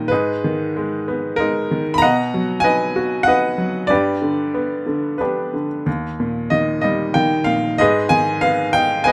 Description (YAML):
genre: classical, lyrical solo piano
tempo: 94 BPM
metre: 3/4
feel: rubato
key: unclear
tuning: A4 = 440 Hz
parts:
  - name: bright upright piano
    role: solo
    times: 0.0-9.1 s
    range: Eb2 to Cb6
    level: -19 LUFS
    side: equal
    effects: none
room: light reverb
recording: close, detailed microphones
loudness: -19 LUFS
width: mono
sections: 0.0-9.1 A section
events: none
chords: 0.1 Abm; 2.0 B; 3.9 G; 5.9 Eb; 7.8 Abm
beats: | 0.11 0.75 1.38 | 2.01 2.64 3.27 | 3.90 4.55 5.20 | 5.87 6.52 7.16 | 7.80 8.43 9.06